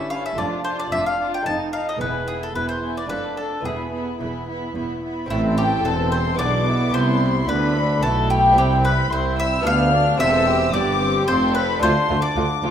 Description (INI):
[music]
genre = classical, baroque-style concerto movement with solo episodes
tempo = 110 BPM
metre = 3/4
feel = straight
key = A minor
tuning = A4 = 440 Hz
[part]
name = mandolin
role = melody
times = 0.0-12.7 s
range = E4 to A5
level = -23 LUFS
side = left 1 dB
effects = none
[part]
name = warm chamber violin section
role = melody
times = 0.0-12.7 s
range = E5 to F6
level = -28 LUFS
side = left 5 dB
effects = none
[part]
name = rich chamber violin section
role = second line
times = 0.0-12.7 s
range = D4 to A4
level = -28 LUFS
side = left 1 dB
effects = none
[part]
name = dark chamber viola section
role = accompaniment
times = 0.0-12.7 s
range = A3 to Eb4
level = -27 LUFS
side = right 2 dB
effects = none
[part]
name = lute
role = accompaniment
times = 0.0-12.7 s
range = D2 to A4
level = -29 LUFS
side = right 1 dB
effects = none
[part]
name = warm chamber cello section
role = bass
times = 0.0-12.7 s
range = C2 to D3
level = -26 LUFS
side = right 1 dB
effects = none
[part]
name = warm studio double bass section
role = bass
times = 0.0-12.7 s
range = E1 to D2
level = -26 LUFS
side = right 2 dB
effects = none
[sound]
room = moderate recital hall reverb, RT60 1.4 s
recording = none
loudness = -18 LUFS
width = side -9 dB against mid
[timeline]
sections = 0.0-5.3 A section; 5.3-12.7 B section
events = none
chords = 0.4 Dm/F; 1.5 F7; 2.0 E; 3.1 Dm/F; 3.7 E; 5.3 Am; 6.4 E7/B; 6.9 Am/C; 8.6 C; 9.7 G7/D; 10.2 C/E; 11.8 Dm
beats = | 0.38 0.93 1.47 | 2.01 2.56 3.10 | 3.65 4.20 4.75 | 5.30 5.85 6.39 | 6.94 7.49 8.03 | 8.57 9.11 9.65 | 10.20 10.74 11.28 | 11.82 12.36